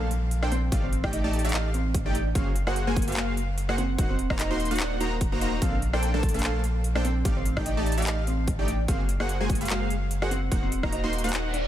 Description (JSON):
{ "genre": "future bass", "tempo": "147 BPM", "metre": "4/4", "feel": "swing 55% on 16ths, half-time", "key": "Bb major", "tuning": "A4 = 440 Hz", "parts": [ { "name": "mellow electric guitar", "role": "melody", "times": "0.0-11.7 s", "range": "Ab3 to Eb5", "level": "-33 LUFS", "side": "equal", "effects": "analog chorus, sidechain pumping, tape echo" }, { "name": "airy dreamy lead", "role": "arpeggios", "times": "0.0-11.5 s", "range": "F5 to C6", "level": "-37 LUFS", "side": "equal", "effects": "chorus, sidechain pumping, tape echo" }, { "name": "supersaw stab", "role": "riff", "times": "0.0-11.5 s", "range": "A3 to C6", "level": "-31 LUFS", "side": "right 1 dB", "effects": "cassette tape, sidechain pumping" }, { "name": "saturated sub bass", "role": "bass", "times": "0.0-11.7 s", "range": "Eb1 to Bb1", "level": "-28 LUFS", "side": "equal", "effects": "sidechain pumping" }, { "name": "impact and reverse cymbal", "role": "sound effects", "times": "0.0-0.7, 11.5-11.7 s", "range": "none", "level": "-42 LUFS", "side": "right 1 dB", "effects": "none" }, { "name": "big-room dance drum kit", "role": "drums", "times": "0.1-11.6 s", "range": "handclaps, hi-hat, rim click", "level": "-34 LUFS", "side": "equal", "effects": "none" }, { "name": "electronic kick drum", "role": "drums", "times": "0.7-10.9 s", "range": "none", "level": "-28 LUFS", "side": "equal", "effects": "none" } ], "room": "digital ambience", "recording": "none", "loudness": "-24 LUFS", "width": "side -12 dB against mid", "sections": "0.0-11.7 A section", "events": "impact 0.0-0.7; reverse cymbal 11.5", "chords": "0.0 Bbmaj9; 0.7 F13/A; 2.4 Gbmaj9#11; 4.0 Ebm6; 5.6 Bbmaj9; 7.3 F13/A; 8.9 Gbmaj9#11; 10.5 Ebm6", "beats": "0.31 | 0.72 1.13 1.54 1.95 | 2.35 2.76 3.17 3.58 | 3.99 4.39 4.80 5.21 | 5.62 6.03 6.43 6.84 | 7.25 7.66 8.07 8.48 | 8.88 9.29 9.70 10.11 | 10.52 10.93 11.33" }